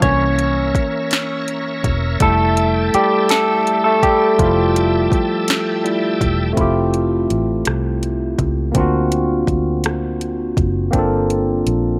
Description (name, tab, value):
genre	slow six-eight R&B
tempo	55 BPM (dotted quarters)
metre	6/8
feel	straight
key	F major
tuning	A4 = 440 Hz
part	barky tine electric piano	accompaniment	0.0-12.0 s	E3 to Db5	-19 LUFS	equal	overdrive, analog chorus
part	bright tonewheel organ	sustained chords	0.0-6.5 s	A4 to G5	-29 LUFS	equal	overdrive, chorus vibrato, slow rotary speaker
part	vintage muted fingered electric bass	bass	0.0-12.0 s	E1 to D2	-23 LUFS	equal	none
part	smooth R&B drum kit	drums	0.0-11.8 s	hi-hat, kick drum, rim click, snare drum	-23 LUFS	equal	none
room	light reverb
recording	none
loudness	-17 LUFS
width	mono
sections	0.0-6.6 A section; 6.6-12.0 B section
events	tine electric piano solo 0.0-6.6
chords	0.0 C7b9; 2.2 Fmaj9; 8.8 D7alt; 10.9 Gm11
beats	| 0.02 1.11 | 2.21 3.30 | 4.39 5.48 | 6.57 7.66 | 8.75 9.84 | 10.93